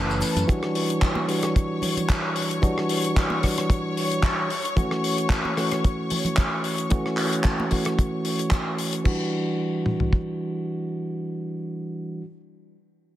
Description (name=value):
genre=nu-disco, nu disco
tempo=112 BPM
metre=4/4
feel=swing 54% on 16ths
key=E dorian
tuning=A4 = 441 Hz
part: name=tine electric piano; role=accompaniment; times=0.0-12.2 s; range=E3 to B4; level=-26 LUFS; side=right 1 dB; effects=vintage 12-bit sampler grit, low-pass filter, tape echo
part: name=rich studio string section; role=sustained chords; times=0.0-9.1 s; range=A4 to C#6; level=-31 LUFS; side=left 3 dB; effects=sidechain pumping
part: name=damped 70s drum kit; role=drums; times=0.1-9.2 s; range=crash cymbal, handclaps, hi-hat, rim click, shaker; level=-28 LUFS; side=left 1 dB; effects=none
part: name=cabasa and congas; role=percussion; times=0.1-7.7 s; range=none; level=-33 LUFS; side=right 2 dB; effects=none
part: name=damped 70s drum kit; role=drums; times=0.5-10.3 s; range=kick drum, toms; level=-21 LUFS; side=equal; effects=none
room=light reverb, studio ambience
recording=none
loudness=-22 LUFS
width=side -13 dB against mid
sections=0.0-9.1 A section; 9.1-13.2 B section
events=none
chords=0.5 Em9; 4.5 F#m7; 9.1 Em9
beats=| 0.48 1.02 1.55 2.09 | 2.62 3.16 3.69 4.23 | 4.77 5.30 5.84 6.37 | 6.91 7.44 7.98 8.52 | 9.05 9.59 10.12 10.66 | 11.19 11.73